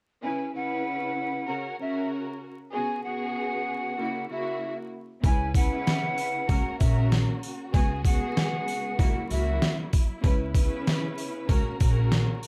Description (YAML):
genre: hip hop, boom-bap hip-hop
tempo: 96 BPM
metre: 4/4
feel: swing 57% on 16ths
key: C# dorian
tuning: A4 = 438 Hz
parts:
  - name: breathy jazz flute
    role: melody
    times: 0.2-9.8 s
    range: E5 to G#5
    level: -34 LUFS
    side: equal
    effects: high-pass filter, low-pass filter, digital delay
  - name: warm studio string section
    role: accompaniment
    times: 0.2-12.5 s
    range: C#3 to B4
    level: -34 LUFS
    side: equal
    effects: cassette tape, high-pass filter, low-pass filter
  - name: warm studio string section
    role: sustained chords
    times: 5.2-12.5 s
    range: C#3 to F#4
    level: -43 LUFS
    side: equal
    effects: none
  - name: upright bass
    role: bass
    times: 5.2-12.2 s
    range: A#1 to C#2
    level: -30 LUFS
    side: equal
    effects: none
  - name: trip hop sampler-style drum kit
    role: drums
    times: 5.2-12.3 s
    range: kick drum, snare drum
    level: -26 LUFS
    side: equal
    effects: none
  - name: sleigh bells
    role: percussion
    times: 5.2-12.5 s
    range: none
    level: -45 LUFS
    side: equal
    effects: none
room: light reverb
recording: vinyl crackle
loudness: -27 LUFS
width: mono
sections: 0.2-5.2 A section; 5.2-12.5 B section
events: hi-hats muted 5.2-12.5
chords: 0.2 C#m7; 1.5 F#7/C#; 2.7 G#m7/C#; 4.0 F#7/C#; 5.2 C#m7; 6.5 F#7/A#; 7.7 G#m7/C#; 9.0 F#7/C#; 10.2 C#m7; 11.5 F#/A#